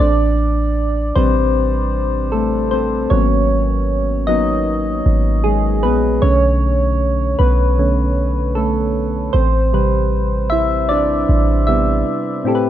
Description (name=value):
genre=contemporary R&B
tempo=77 BPM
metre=4/4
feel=straight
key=A dorian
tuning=A4 = 440 Hz
part: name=soft electric-piano-like synth keys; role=accompaniment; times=0.0-12.7 s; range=A2 to E5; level=-16 LUFS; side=equal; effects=chorus
part: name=clean 808-style bass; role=bass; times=0.0-12.0 s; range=G#1 to B1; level=-17 LUFS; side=equal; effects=none
room=light reverb, digital ambience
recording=none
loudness=-14 LUFS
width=side -11 dB against mid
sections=0.0-12.5 A section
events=synth keys solo 0.0-12.5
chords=0.0 Am7; 3.1 G#m7; 6.2 Bm7; 9.3 Am7